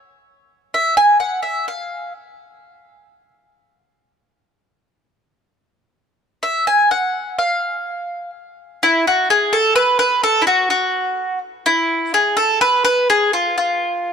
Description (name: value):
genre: folk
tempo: 126 BPM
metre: 3/4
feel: straight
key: unclear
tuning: A4 = 440 Hz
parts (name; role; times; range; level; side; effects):
- mandolin; melody; 0.7-2.1, 6.4-14.1 s; E4 to G#5; -15 LUFS; equal; none
room: moderate plate reverb, RT60 3.3 s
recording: none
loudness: -15 LUFS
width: side -7 dB against mid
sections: 0.0-8.8 A section; 8.8-14.1 B section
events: none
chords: none